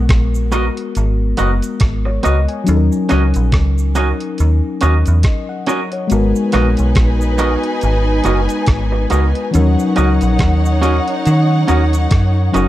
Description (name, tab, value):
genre	lovers rock reggae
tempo	70 BPM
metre	4/4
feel	swing 58% on 16ths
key	G# minor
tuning	A4 = 440 Hz
part	mellow FM electric piano	accompaniment	0.0-12.7 s	E3 to G#5	-20 LUFS	left 4 dB	chorus, dub echo
part	metallic FM bass	bass	0.0-12.7 s	F#1 to D#3	-14 LUFS	equal	none
part	crisp 8-bit digital drum machine	drums	0.1-12.7 s	hi-hat, kick drum, rim click	-17 LUFS	equal	overdrive, dub echo
part	cabasa	percussion	0.3-12.7 s	none	-36 LUFS	right 6 dB	none
part	twangy electric guitar	stabs	0.5-12.7 s	B3 to D#5	-20 LUFS	right 2 dB	none
part	rich studio string section	second line	6.1-12.7 s	D#4 to G#5	-20 LUFS	equal	dub echo
room	digital ambience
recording	dark, warm production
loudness	-12 LUFS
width	side -14 dB against mid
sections	0.0-12.7 A section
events	none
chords	0.0 G#m9; 2.7 D#m7; 6.1 G#m9; 9.5 D#m7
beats	0.09 0.95 1.81 | 2.67 3.52 4.38 5.24 | 6.10 6.96 7.82 8.68 | 9.54 10.40 11.26 12.11